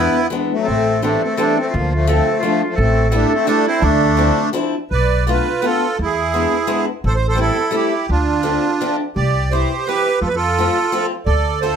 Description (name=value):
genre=musette waltz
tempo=170 BPM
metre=3/4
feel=swing 54% on 8ths, rubato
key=D minor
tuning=A4 = 441 Hz
part: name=accordion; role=melody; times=0.0-11.8 s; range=F3 to D5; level=-18 LUFS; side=right 2 dB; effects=light tremolo tuning
part: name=clear clarinet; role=second line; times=0.0-4.5 s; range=F4 to C5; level=-21 LUFS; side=right 6 dB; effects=none
part: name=picked old ladder-braced acoustic guitar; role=accompaniment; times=0.0-11.8 s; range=E3 to F4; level=-21 LUFS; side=left 4 dB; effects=none
part: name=upright bass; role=bass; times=0.0-11.7 s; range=A1 to F2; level=-19 LUFS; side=equal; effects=none
room=moderate studio reverb, RT60 0.6 s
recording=none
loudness=-15 LUFS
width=side -7 dB against mid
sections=0.0-4.9 A section; 4.9-11.8 B section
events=none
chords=0.0 E7; 0.7 Am7; 1.7 Dm7; 2.8 A7sus4; 3.8 Dm9; 4.9 Bm7b5; 6.0 E7; 7.0 Am7; 8.1 Dm7; 9.2 C; 10.2 F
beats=0.32 | 0.68 1.04 1.39 | 1.74 2.08 2.43 | 2.78 3.12 3.47 | 3.83 4.18 4.54 | 4.91 5.27 5.63 | 5.99 6.34 6.69 | 7.03 7.38 7.73 | 8.08 8.44 8.79 | 9.15 9.51 9.87 | 10.22 10.57 10.92 | 11.27 11.62